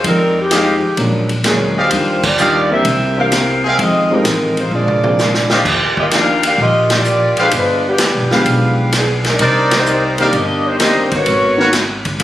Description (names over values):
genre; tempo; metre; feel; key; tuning
jazz, big band swing; 128 BPM; 4/4; swing 69% on 8ths; Eb major; A4 = 440 Hz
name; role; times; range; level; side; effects
mellow saxophone section; melody; 0.0-11.7 s; Eb3 to F5; -16 LUFS; equal; none
hollow-body jazz guitar; accompaniment; 0.0-5.5 s; F2 to G4; -21 LUFS; left 1 dB; none
upright bass; bass; 0.0-12.2 s; G1 to F2; -20 LUFS; equal; none
swinging big-band drum kit; drums; 0.0-12.2 s; crash cymbal, hi-hat, kick drum, ride cymbal, snare drum, toms; -18 LUFS; equal; none
warm grand piano; accompaniment; 0.5-11.7 s; Eb3 to Bb4; -19 LUFS; equal; none
clear trumpet section; stabs; 0.5-12.2 s; Eb4 to F5; -17 LUFS; equal; none
room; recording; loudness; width
light reverb; recorded on a phone in the room, studio reverb, compression; -11 LUFS; side -13 dB against mid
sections
0.0-5.7 A section; 5.7-12.2 A section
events
band accent 2.1, 6.8, 9.6; drum fill 4.7-5.7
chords
0.0 Fm9; 1.0 Bb7alt; 1.9 Ebmaj9; 2.8 C7; 3.8 Fm7; 4.7 Bb7; 5.7 Ebmaj9; 7.5 G7b9; 9.4 Cm9; 11.3 Abm11